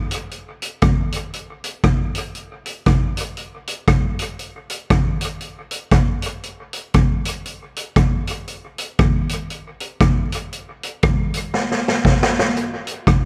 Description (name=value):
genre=ska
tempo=118 BPM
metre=4/4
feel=swing 60% on 8ths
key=none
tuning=none
part: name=street-band drum kit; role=drums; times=0.1-13.2 s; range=hi-hat, kick drum, rim click, snare drum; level=-20 LUFS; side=equal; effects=tape echo
room=little or no reverb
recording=dark, warm production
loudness=-20 LUFS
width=mono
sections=0.0-12.6 A section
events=drum fill 11.5-12.6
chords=none